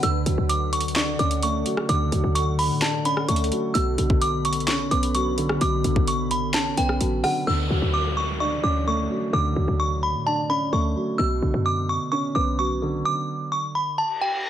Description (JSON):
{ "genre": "hip hop, trap", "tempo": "129 BPM", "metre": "4/4", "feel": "half-time", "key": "D major", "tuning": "A4 = 445 Hz", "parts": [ { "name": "delicate synth tine bell", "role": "melody", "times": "0.0-14.5 s", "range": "F#5 to E6", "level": "-26 LUFS", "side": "equal", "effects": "chorus, low-pass filter" }, { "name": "dark grand piano", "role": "accompaniment", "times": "0.0-14.0 s", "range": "B2 to D4", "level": "-26 LUFS", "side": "right 2 dB", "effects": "low-pass filter" }, { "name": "glassy FM pad", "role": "sustained chords", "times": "0.0-7.4 s", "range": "D3 to B5", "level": "-31 LUFS", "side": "left 4 dB", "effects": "ensemble chorus, built-in reverb" }, { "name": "short 808-style bass", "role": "bass", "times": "0.0-13.0 s", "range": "A1 to A2", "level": "-26 LUFS", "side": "left 1 dB", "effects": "none" }, { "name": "trap drum kit", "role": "drums", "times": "0.0-7.3 s", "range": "handclaps, hi-hat, kick drum, rim click, snare drum", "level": "-26 LUFS", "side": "equal", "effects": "none" }, { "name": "downlifter and reverse cymbal", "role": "sound effects", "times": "7.5-14.5 s", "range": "none", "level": "-32 LUFS", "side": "equal", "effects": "none" } ], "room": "light reverb, digital ambience", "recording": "none", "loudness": "-21 LUFS", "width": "side -10 dB against mid", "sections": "0.0-7.5 A section; 7.5-14.5 B section", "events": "reverse cymbal 14.1-14.5", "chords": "0.0 Dmaj7; 3.8 Bmadd9; 7.5 Dmaj7; 11.2 Bmadd9" }